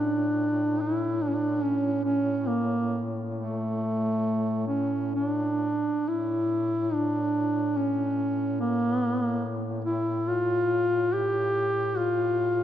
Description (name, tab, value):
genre	caucasian folk, Caucasian lament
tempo	71 BPM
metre	3/4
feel	rubato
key	A phrygian dominant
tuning	A4 = 445 Hz
part	dark duduk	melody	0.0-12.6 s	A3 to G4	-25 LUFS	equal	none
part	mellow duduk	drone	0.0-12.6 s	A2	-33 LUFS	left 1 dB	none
room	wet church reverb, RT60 2.8 s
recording	none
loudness	-24 LUFS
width	side -11 dB against mid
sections	0.0-6.1 A section; 6.1-12.6 A section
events	none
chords	none